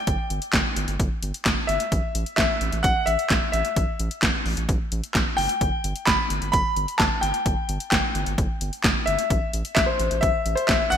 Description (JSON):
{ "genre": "synth-pop", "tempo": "130 BPM", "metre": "4/4", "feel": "straight", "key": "G major", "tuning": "A4 = 440 Hz", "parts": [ { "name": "clear concert grand piano", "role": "melody", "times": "0.0-11.0 s", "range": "C5 to B5", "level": "-25 LUFS", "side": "left 1 dB", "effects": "ping-pong delay" }, { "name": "round analog bass", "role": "bass", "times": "0.1-11.0 s", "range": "F#1 to A1", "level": "-28 LUFS", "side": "equal", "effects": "none" }, { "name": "punchy analog drum machine", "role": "drums", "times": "0.1-11.0 s", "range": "handclaps, hi-hat, kick drum, snare drum", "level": "-23 LUFS", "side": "equal", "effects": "overdrive, gated reverb" } ], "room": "moderate lush hall reverb, RT60 1.6 s, digital ambience", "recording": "bright 1980s-style digital production", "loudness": "-21 LUFS", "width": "side -8 dB against mid", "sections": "0.0-11.0 A section", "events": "none", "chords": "0.0 G5; 1.9 A5; 5.6 G; 9.3 A5", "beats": "| 0.07 0.53 1.00 1.46 | 1.92 2.38 2.84 3.30 | 3.77 4.23 4.69 5.15 | 5.61 6.07 6.53 7.00 | 7.46 7.92 8.38 8.84 | 9.30 9.77 10.23 10.69" }